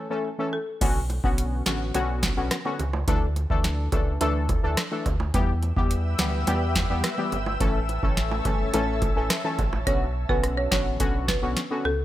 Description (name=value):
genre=dancehall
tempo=106 BPM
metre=4/4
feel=straight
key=B minor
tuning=A4 = 440 Hz
part: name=synth brass stab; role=accompaniment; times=0.0-11.9 s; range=D3 to A4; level=-28 LUFS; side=left 2 dB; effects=chorus
part: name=folk marimba with medium hard mallets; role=melody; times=0.5-0.6, 9.9-12.0 s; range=A4 to C#5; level=-30 LUFS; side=right 2 dB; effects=none
part: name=sub bass with octave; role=bass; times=0.8-12.0 s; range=G1 to E2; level=-28 LUFS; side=equal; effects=none
part: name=booming analog drum machine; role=drums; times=0.8-11.7 s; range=crash cymbal, hi-hat, kick drum, rim click, snare drum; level=-26 LUFS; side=equal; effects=none
part: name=bongos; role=percussion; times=0.8-9.9 s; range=none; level=-35 LUFS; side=right 5 dB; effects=none
part: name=ethereal airy pad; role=sustained chords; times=5.7-9.8 s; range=B4 to E6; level=-33 LUFS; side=equal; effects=ensemble chorus, built-in reverb, sidechain pumping
room=digital ambience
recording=none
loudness=-22 LUFS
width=side -14 dB against mid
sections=0.8-9.9 A section; 9.9-12.0 B section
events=break 0.0-0.8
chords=0.0 A; 0.8 Bmadd9; 3.1 Dsus2; 5.3 Em; 7.6 A; 9.9 Bmadd9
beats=0.25 | 0.81 1.38 1.94 2.51 | 3.08 3.64 4.21 4.77 | 5.34 5.91 6.47 7.04 | 7.61 8.17 8.74 9.30 | 9.87 10.44 11.00 11.57